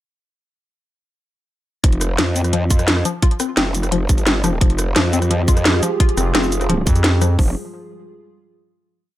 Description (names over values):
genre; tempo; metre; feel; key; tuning
dark technical drum and bass; 173 BPM; 4/4; straight; F minor; A4 = 442 Hz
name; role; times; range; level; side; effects
warbly dusty pluck; arpeggios; 1.8-7.5 s; F3 to F4; -24 LUFS; left 4 dB; chorus, sidechain pumping, digital delay
growl bass; bass; 1.8-7.5 s; F1 to F2; -19 LUFS; equal; chorus, overdrive, sidechain pumping
drum and bass drum kit; drums; 1.8-7.5 s; hi-hat, kick drum; -15 LUFS; equal; none
drum and bass drum kit; drums; 1.8-7.3 s; hi-hat, rim click, shaker, snare drum; -19 LUFS; equal; none
dark analog pad; sustained chords; 4.9-7.5 s; F4 to Ab4; -26 LUFS; right 3 dB; chorus, sidechain pumping
growling FM bass; bass; 6.2-7.4 s; F1 to F2; -16 LUFS; equal; none
room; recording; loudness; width
little or no reverb; none; -15 LUFS; side -14 dB against mid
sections
1.8-7.4 drop; 7.4-8.8 final chord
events
drop 1.8-7.4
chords
1.8 Fmadd9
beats
| 1.84 2.19 2.53 2.88 | 3.23 3.57 3.92 4.27 | 4.61 4.96 5.31 5.65 | 6.00 6.35 6.69 7.04 | 7.39